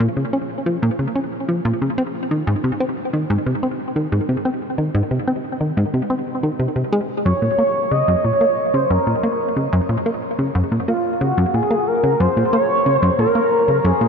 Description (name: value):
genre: ambient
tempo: 91 BPM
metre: 4/4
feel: straight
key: Gb lydian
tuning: A4 = 440 Hz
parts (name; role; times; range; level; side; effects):
- plucky analog bass; riff; 0.0-14.1 s; Gb2 to Db4; -19 LUFS; equal; shimmer reverb, tape echo
- pulse-width lead; melody; 7.3-14.1 s; F4 to Eb5; -18 LUFS; equal; chorus, shimmer reverb, tape echo
room: wet huge ambient reverb, RT60 7.3 s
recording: none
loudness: -17 LUFS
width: side -6 dB against mid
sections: 0.0-14.1 A section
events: none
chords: 0.0 Bbm; 2.0 Ab5; 7.3 Gb